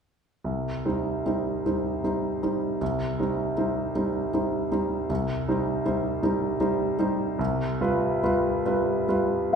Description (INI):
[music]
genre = classical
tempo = 52 BPM (dotted quarters)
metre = 6/8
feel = uneven beats, rubato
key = C minor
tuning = A4 = 442 Hz
[part]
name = warm concert grand piano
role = accompaniment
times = 0.4-9.6 s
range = C2 to C5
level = -24 LUFS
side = right 1 dB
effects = none
[sound]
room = wet recital hall reverb, RT60 1.2 s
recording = recorded in a church or concert hall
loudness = -24 LUFS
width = side -6 dB against mid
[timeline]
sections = 0.4-9.6 A section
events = none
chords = 0.4 Cm; 7.4 G7/C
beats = | 0.45 1.66 | 2.81 3.95 | 5.10 6.23 | 7.39 8.66